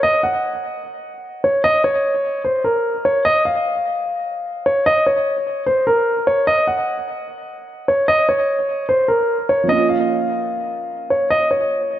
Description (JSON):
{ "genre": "hip hop", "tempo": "149 BPM", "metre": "4/4", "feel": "half-time", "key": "Bb minor", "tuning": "A4 = 440 Hz", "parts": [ { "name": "dark baby grand piano", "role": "melody", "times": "0.0-12.0 s", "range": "Bb4 to Gb5", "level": "-16 LUFS", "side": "equal", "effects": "low-pass filter, analog delay" }, { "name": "felt-muted upright piano", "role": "accompaniment", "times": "9.6-12.0 s", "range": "F3 to F4", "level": "-22 LUFS", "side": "right 7 dB", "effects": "low-pass filter, analog delay" } ], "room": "moderate plate reverb, RT60 2.2 s", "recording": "echo-heavy mix", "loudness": "-16 LUFS", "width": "side -12 dB against mid", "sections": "0.0-9.7 A section; 9.7-12.0 B section", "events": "none", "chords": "0.0 N.C.; 9.7 Bbm" }